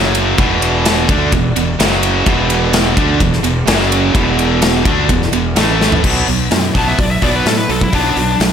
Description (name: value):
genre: hard rock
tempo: 127 BPM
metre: 4/4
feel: straight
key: unclear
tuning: A4 = 440 Hz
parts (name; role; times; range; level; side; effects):
- high-gain distorted guitar; riff; 0.0-8.5 s; E2 to D4; -18 LUFS; left 9 dB; distortion, slapback echo
- overdriven electric guitar; riff; 0.0-8.5 s; E2 to D4; -17 LUFS; right 8 dB; slapback echo
- fuzz fingered electric bass; bass; 0.0-8.5 s; E1 to A2; -18 LUFS; equal; overdrive
- big rock drum kit; drums; 0.0-8.5 s; crash cymbal, hi-hat, kick drum, ride cymbal, snare drum, toms; -16 LUFS; left 1 dB; none
- bluesy overdriven lead guitar; melody; 6.8-8.4 s; D4 to A5; -18 LUFS; left 2 dB; distortion, slapback echo, tape echo
room: moderate recital hall reverb, RT60 1.3 s, studio reverb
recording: big arena sound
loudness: -11 LUFS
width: side -8 dB against mid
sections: 0.0-6.0 A section; 6.0-8.5 B section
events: drum fill 5.8; lead electric guitar solo 6.0-8.5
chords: 0.4 E5; 1.8 F#5; 2.3 E5; 3.7 F#5; 4.1 E5; 5.6 A5; 6.0 Bm